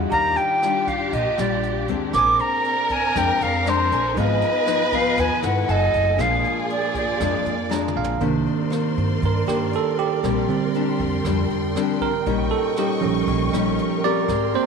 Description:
bossa nova; 118 BPM; 4/4; straight; A4 = 440 Hz
warm studio violin section; second line; 0.0-8.0 s; F#4 to Cb5; -27 LUFS; equal
bell-like tine electric piano; accompaniment; 0.0-14.7 s; D3 to Bb5; -25 LUFS; right 11 dB
nylon-string guitar; accompaniment; 0.0-14.7 s; F2 to Bb4; -26 LUFS; left 13 dB
rich studio string section; sustained chords; 0.0-14.7 s; A3 to Db6; -30 LUFS; equal
upright bass; bass; 0.0-14.5 s; Gb1 to G2; -26 LUFS; equal
concert flute; melody; 0.1-7.9 s; C5 to D6; -21 LUFS; right 1 dB
jazz brush drum kit; drums; 0.1-14.7 s; hi-hat, kick drum, rim click, snare drum, toms; -35 LUFS; right 3 dB
moderate echo chamber reverb, RT60 1.3 s, studio reverb; 1960s-style stereo with parts hard left and right; -19 LUFS; side -5 dB against mid
0.0-8.2 A section; 8.2-14.7 B section
tine electric piano fill 7.5-8.2; drum fill 7.7-8.2; tine electric piano solo 8.2-14.7
0.1 Ebmaj9; 2.1 Bb9; 4.2 Abm6; 5.7 Gbm9; 6.2 Bb7; 8.2 Cm9; 10.2 Bb69; 12.3 Eb7/Bb

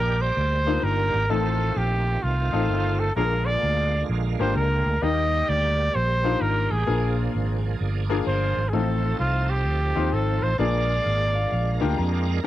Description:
gospel; 129 BPM; 4/4; swing 64% on 8ths; A4 = 442 Hz
clear trumpet; melody; 0.0-11.9 s; F4 to Eb5; -25 LUFS; right 1 dB; cassette tape
clear grand piano; accompaniment; 0.0-12.5 s; G2 to Bb5; -28 LUFS; left 8 dB; cassette tape
bright tonewheel organ; sustained chords; 0.0-12.5 s; D3 to D5; -33 LUFS; right 9 dB; chorus vibrato, slow rotary speaker, cassette tape
fingered electric bass; bass; 0.0-12.4 s; G1 to F2; -24 LUFS; right 1 dB; tube saturation
light reverb; home recording on cassette; -21 LUFS; side -14 dB against mid
0.0-12.4 A section
grand piano fill 11.1-12.4
0.0 Ebmaj7; 1.3 F7/A; 3.2 Bb7; 5.0 Ebmaj7; 6.9 Bb7; 8.7 F7/A; 10.6 Bb7

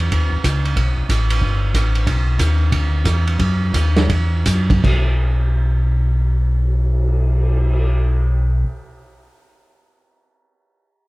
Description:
soul jazz organ trio; 157-185 BPM; 4/4; swing 64% on 8ths; A4 = 440 Hz
mellow tonewheel organ; bass; 0.0-8.6 s; G1 to F#2; -16 LUFS; equal; slow rotary speaker
vintage drum kit; drums; 0.0-7.8 s; crash cymbal, cymbal swell, hi-hat, kick drum, ride cymbal, snare drum; -21 LUFS; right 1 dB
moderate club reverb, RT60 0.8 s; heard from further back in the room; -15 LUFS; side -21 dB against mid
0.0-4.8 A section; 4.8-7.9 B section
slowing down 2.1-4.8

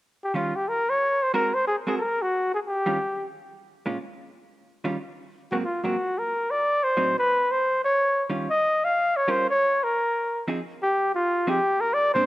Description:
jazz; 181 BPM; 4/4; swing 62% on 8ths; Eb mixolydian; A4 = 440 Hz
warm flugelhorn; melody; 0.2-3.3, 5.5-12.3 s; F4 to F5; -22 LUFS; equal
vintage hollow-body jazz guitar; accompaniment; 0.3-12.3 s; Ab2 to Bb4; -30 LUFS; right 2 dB
moderate lush hall reverb, RT60 2.2 s; rough home demo mix; -22 LUFS; side -16 dB against mid
0.0-12.3 A section
0.0 Eb9; 1.3 Ab9; 2.6 Eb9; 4.0 N.C.; 4.6 Eb9; 5.3 Ab9; 6.6 Adim7; 7.9 Eb9; 9.3 Gm7b5; 9.9 Fm7

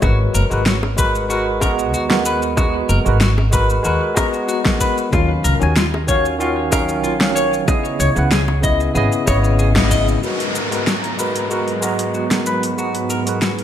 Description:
sunset chillout; 94 BPM; 4/4; straight; G# minor; A4 = 441 Hz
barky tine electric piano; accompaniment; 0.0-13.4 s; C#3 to A#5; -20 LUFS; moving between left 5 dB and right 5 dB; medium stereo tremolo, auto-pan, low-pass filter, digital delay
clean electric guitar; arpeggios; 0.0-13.5 s; E#4 to D#5; -23 LUFS; left 2 dB; low-pass filter, digital delay
upright bass; bass; 0.0-10.2 s; F#1 to D#2; -19 LUFS; equal
deep house drum kit; drums; 0.0-13.6 s; hi-hat, shaker, snare drum; -21 LUFS; equal; studio reverb, gated reverb
electronic kick drum; drums; 0.0-10.1 s; -20 LUFS; equal; studio reverb
bongos; percussion; 0.0-9.4 s; -26 LUFS; left 1 dB
lush unison pad; sustained chords; 10.2-13.6 s; G#2 to A#5; -25 LUFS; right 1 dB; chorus
downlifter; sound effects; 10.2-13.6 s; -26 LUFS; equal
moderate plate reverb, RT60 2.2 s; bright 1980s-style digital production; -15 LUFS; side -10 dB against mid
0.0-10.2 A section; 10.2-13.6 B section
band accent 9.8-10.1; filter sweep on tine electric piano 10.2-13.6; filter sweep on clean electric guitar 10.2-13.6
0.0 G#m9; 5.1 D#m9; 7.7 C#m9; 10.2 G#m9

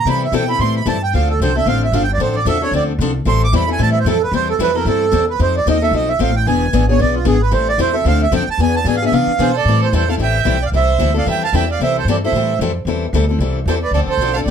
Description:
acoustic string swing (jazz manouche); 225 BPM; 4/4; swing 57% on 8ths; A minor; A4 = 440 Hz
accordion; melody; 0.0-14.5 s; F4 to D6; -18 LUFS; right 6 dB
upright bass; bass; 0.0-14.5 s; E1 to C3; -18 LUFS; equal
picked steel-string acoustic guitar; accompaniment; 0.1-14.5 s; D3 to A4; -19 LUFS; left 7 dB
warm violin; second line; 9.4-14.5 s; G#4 to F5; -24 LUFS; right 7 dB
light reverb; -13 LUFS; side -8 dB against mid
0.0-9.7 A section; 9.7-14.5 B section
accordion solo 0.0-9.7
0.0 Am7; 1.1 Dm7; 3.3 Am7; 5.4 F7; 6.5 E7; 7.5 Am7; 8.1 Dm7; 8.6 E7b9; 9.7 Am7; 13.9 Dm7

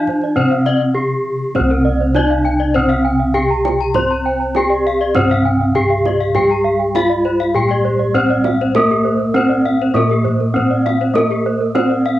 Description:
Balinese gamelan; 100 BPM; 4/4; straight; C slendro; A4 = 441 Hz
gamelan-type bronze metallophone; melody; 0.0-12.2 s; Bb3-45c to C5; -16 LUFS; equal; cassette tape
gamelan-type bronze metallophone; accompaniment; 0.0-12.2 s; C3 to C4; -28 LUFS; left 5 dB; cassette tape
gamelan-type bronze metallophone; arpeggios; 0.0-12.2 s; G4+25c to C6; -20 LUFS; left 6 dB; cassette tape
gamelan-type bossed gongs; bass; 0.0-12.2 s; C2 to C5; -20 LUFS; equal
gamelan-type bronze metallophone; arpeggios; 0.1-12.0 s; Bb4-45c to Bb5-45c; -24 LUFS; right 6 dB; cassette tape, analog delay
kendang; percussion; 0.1-12.1 s; -25 LUFS; right 7 dB
moderate studio reverb, RT60 0.6 s; home recording on cassette; -13 LUFS; side -14 dB against mid
0.0-1.6 A section; 1.6-12.2 B section
drum fill 0.8-1.6

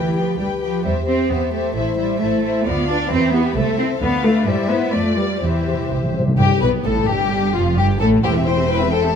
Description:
quick classical-period movement for symphony orchestra; 131 BPM; 2/4; rubato; C major; A4 = 440 Hz
warm chamber violin section; melody; 0.0-9.1 s; F4 to G5; -28 LUFS; left 4 dB
rich chamber violin section; second line; 0.0-9.2 s; F4 to D5; -23 LUFS; left 6 dB
rich studio viola section; accompaniment; 0.0-9.2 s; F3 to C5; -25 LUFS; equal
mellow French horn section; sustained chords; 0.0-6.2 s; E4 to C5; -26 LUFS; left 6 dB
warm chamber cello section; bass; 0.0-9.1 s; E2 to D4; -21 LUFS; right 1 dB
warm symphonic double bass section; bass; 0.0-9.1 s; E1 to G2; -24 LUFS; right 3 dB
timpani; percussion; 5.4-7.0 s; C3; -22 LUFS; equal
moderate scoring stage reverb, RT60 1.6 s; -16 LUFS; side -7 dB against mid
0.0-6.4 A section; 6.4-9.2 A section
timpani fill 5.4-6.4
0.0 G7/D; 0.8 C/E; 1.8 Am; 2.7 Bdim/D; 3.1 Em; 3.6 Am/C; 4.0 Dm; 4.5 C/G; 4.9 G7/F; 5.4 C/E; 6.4 Gadd9; 7.3 Fadd9; 8.2 C/E

